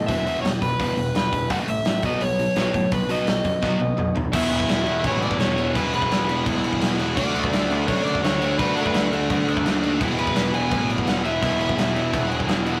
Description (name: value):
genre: punk rock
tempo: 169 BPM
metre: 4/4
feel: straight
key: E mixolydian from 4.3 s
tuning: A4 = 437 Hz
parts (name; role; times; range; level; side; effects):
- crunchy overdriven guitar; melody; 0.0-12.3 s; B4 to G#5; -28 LUFS; equal; none
- crunchy overdriven guitar; riff; 0.0-12.8 s; E2 to D4; -31 LUFS; equal; none
- overdriven semi-hollow guitar; riff; 0.0-12.8 s; E2 to D4; -32 LUFS; equal; none
- overdriven picked electric bass; bass; 0.0-12.8 s; E1 to A2; -31 LUFS; equal; none
- big rock drum kit; drums; 0.1-12.7 s; crash cymbal, hi-hat, kick drum, snare drum, toms; -27 LUFS; equal; none
- tight distorted guitar; riff; 4.3-12.8 s; D3 to F#4; -30 LUFS; equal; distortion
room: light reverb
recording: rough rehearsal-room recording, warm saturation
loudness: -22 LUFS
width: mono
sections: 0.0-4.3 A section; 4.3-12.8 B section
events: drum fill 3.6-4.3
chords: 0.1 E5; 1.5 A5; 2.0 B; 4.3 E; 7.2 D; 10.0 E